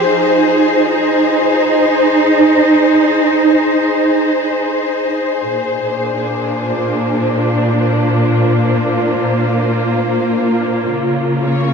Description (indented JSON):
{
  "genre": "ambient",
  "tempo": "free time",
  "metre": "none",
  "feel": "none",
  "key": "unclear",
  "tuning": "A4 = 440 Hz",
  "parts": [
    { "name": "dark symphonic string section", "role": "solo", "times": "0.0-11.7 s", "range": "Bb2 to Db5", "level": "-12 LUFS", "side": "equal", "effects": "diffuse ambient delay" }
  ],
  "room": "wet cathedral reverb, RT60 5.4 s",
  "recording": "none",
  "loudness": "-12 LUFS",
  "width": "side -5 dB against mid",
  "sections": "0.0-11.7 A section",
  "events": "none",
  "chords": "0.1 Ab; 5.5 Bbadd9; 10.9 Db6",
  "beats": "free time"
}